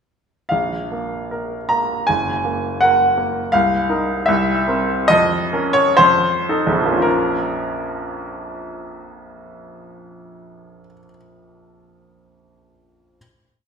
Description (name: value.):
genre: classical, romantic character piece for solo piano.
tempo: 54-85 BPM.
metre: 2/4.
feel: rubato.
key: Bb minor.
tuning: A4 = 442 Hz.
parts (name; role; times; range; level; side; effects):
clear baby grand piano; solo; 0.5-13.2 s; Gb1 to Bb5; -16 LUFS; equal; none.
room: wet recital hall reverb, RT60 1.7 s.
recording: recorded in a church or concert hall.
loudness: -16 LUFS.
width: side -6 dB against mid.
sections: 0.5-7.0 A section; 7.0-11.0 final chord.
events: slowing down 2.8-7.0.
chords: 0.5 N.C.; 2.1 Gb; 3.5 Cmadd11; 4.3 C7; 5.1 Bbm/F; 6.0 F7; 7.0 Bbm.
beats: | 0.52 1.32 | 2.09 2.82 | 3.54 4.29 | 5.10 6.00 | 7.05 8.04 | 9.02 10.00.